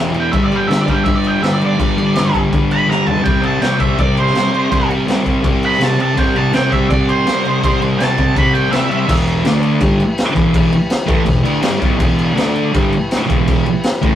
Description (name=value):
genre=garage rock duo or trio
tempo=164 BPM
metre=4/4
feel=straight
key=unclear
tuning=A4 = 441 Hz
part: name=overdriven combo organ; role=sustained chords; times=0.0-14.2 s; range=D4 to F#5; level=-28 LUFS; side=left 2 dB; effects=none
part: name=thick fuzz guitar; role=riff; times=0.0-14.2 s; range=E2 to D4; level=-15 LUFS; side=equal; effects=distortion
part: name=raw garage drum kit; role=drums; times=0.1-14.1 s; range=crash cymbal, kick drum, snare drum, toms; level=-18 LUFS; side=equal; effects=none
part: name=octave-fuzz lead guitar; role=melody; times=0.2-9.1 s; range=C5 to B5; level=-18 LUFS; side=right 3 dB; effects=distortion
room=moderate studio reverb, RT60 0.7 s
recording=rough rehearsal-room recording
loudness=-12 LUFS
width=side -11 dB against mid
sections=0.0-9.1 A section; 9.1-14.2 B section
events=lead electric guitar solo 0.0-9.1; drum fill 2.9-3.3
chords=0.3 G; 3.3 C; 9.1 Em; 9.5 D5; 9.8 Em; 12.4 D5; 12.7 Em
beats=| 0.33 0.69 1.06 1.43 | 1.79 2.16 2.52 2.89 | 3.25 3.62 3.98 4.35 | 4.71 5.08 5.44 5.80 | 6.17 6.53 6.90 7.26 | 7.63 7.99 8.36 8.72 | 9.09 9.45 9.82 10.18 | 10.55 10.92 11.28 11.65 | 12.02 12.38 12.75 13.12 | 13.48 13.85